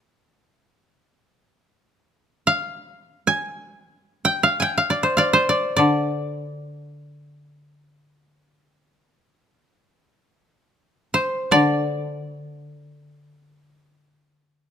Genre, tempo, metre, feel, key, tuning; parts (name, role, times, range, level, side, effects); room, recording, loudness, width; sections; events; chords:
japanese traditional, Japanese chamber music; free time; A4 = 440 Hz
koto; melody; 0.0-14.7 s; G4 to Ab5; -19 LUFS; equal
koto; accompaniment; 5.8-14.7 s; D3; -22 LUFS; left 2 dB
light reverb; close, detailed microphones; -19 LUFS; side -8 dB against mid
0.0-1.5 A section; 1.5-14.7 A section
slowing down 11.4-14.7